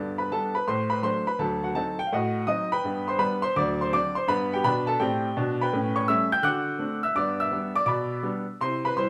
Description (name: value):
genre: jazz, stride piano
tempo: 166 BPM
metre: 4/4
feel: swing 66% on 8ths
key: G major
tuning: A4 = 439 Hz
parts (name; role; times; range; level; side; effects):
- warm baby grand piano; solo; 0.0-9.1 s; D2 to G6; -26 LUFS; equal; none
room: wet studio reverb, RT60 0.9 s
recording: heard from further back in the room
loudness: -26 LUFS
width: mono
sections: 0.0-9.1 A section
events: none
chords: 0.0 G; 0.7 D7/A; 1.4 D7b9; 2.8 G; 3.6 D7; 4.3 G; 5.7 A7; 6.4 D7; 7.2 G; 7.9 G/B